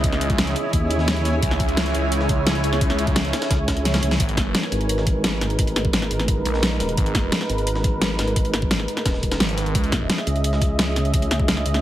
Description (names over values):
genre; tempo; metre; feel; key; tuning
dark technical drum and bass; 173 BPM; 4/4; straight; G# minor; A4 = 440 Hz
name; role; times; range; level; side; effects
dark analog pad; sustained chords; 0.0-11.8 s; G#3 to E5; -27 LUFS; right 1 dB; chorus, sidechain pumping
phased detuned saw bass; bass; 0.0-7.3, 9.4-10.1 s; G#1 to C#2; -24 LUFS; equal; phaser, overdrive
breakbeat sampler-style drum kit; drums; 0.0-11.7 s; hi-hat, snare drum; -31 LUFS; equal; high-pass filter on hats, small room ambience, high-pass filter on snare
dubstep drum kit; drums; 0.0-11.8 s; hi-hat, snare drum; -24 LUFS; equal; small room ambience
electronic kick drum; drums; 0.0-11.5 s; none; -22 LUFS; equal; overdrive, small room ambience
granular cloud pad; texture; 0.0-4.2 s; E4 to G#5; -29 LUFS; equal; built-in reverb, sidechain pumping
vowel-sweep wobble bass; bass; 0.7-1.4, 3.5-11.8 s; D#1 to D#2; -23 LUFS; equal; chorus, tube saturation
room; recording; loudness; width
light reverb, digital ambience; heavily compressed radio sound; -18 LUFS; side -13 dB against mid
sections
0.0-4.2 A section; 4.2-11.8 A section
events
drop 0.0-4.2, 4.2-11.8; kick drops out 3.9-4.2; drum fill 3.9-4.2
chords
0.0 C#m; 4.2 G#m; 9.7 C#m